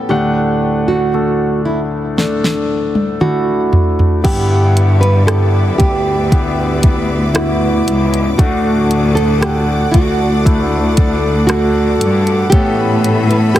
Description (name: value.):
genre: pop ballad.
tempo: 58 BPM.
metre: 4/4.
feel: straight.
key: D major.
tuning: A4 = 440 Hz.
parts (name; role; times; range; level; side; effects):
warm concert grand piano; accompaniment; 0.0-13.6 s; D2 to F#5; -17 LUFS; left 2 dB; none.
nylon-string guitar; melody; 0.1-13.6 s; D4 to B4; -18 LUFS; right 3 dB; ping-pong delay.
smooth R&B drum kit; drums; 2.2-13.6 s; crash cymbal, hi-hat, kick drum, rim click, snare drum, toms; -14 LUFS; equal; none.
rich studio string section; sustained chords; 4.2-13.6 s; A4 to D6; -24 LUFS; left 1 dB; none.
bright studio cello section; bass; 4.2-13.6 s; C#2 to A2; -14 LUFS; equal; none.
room: light reverb, small room reverb.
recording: heavily compressed radio sound.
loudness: -11 LUFS.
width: side -13 dB against mid.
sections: 0.0-4.2 A section; 4.2-13.6 B section.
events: drum fill 2.2-4.2.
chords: 0.1 D; 4.2 G6; 8.4 D; 12.5 Aadd9.